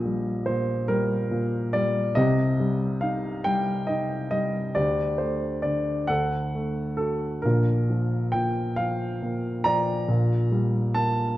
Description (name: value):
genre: classical, lyrical solo piano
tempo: 46 BPM (dotted quarters)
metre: 6/8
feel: rubato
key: unclear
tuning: A4 = 442 Hz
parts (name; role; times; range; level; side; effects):
- dark upright piano; solo; 0.0-11.4 s; Bb1 to Bb5; -23 LUFS; equal; none
room: moderate recital hall reverb, RT60 1.4 s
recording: dark, warm production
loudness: -23 LUFS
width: side -15 dB against mid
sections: 0.0-11.4 A section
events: none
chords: 0.0 Eb/Bb; 2.2 Cm; 4.8 Dsus4; 6.1 D; 7.4 Bb; 10.1 Gm/Bb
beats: 0.90 | 2.17 3.46 | 4.76 6.09 | 7.44 8.78 | 10.08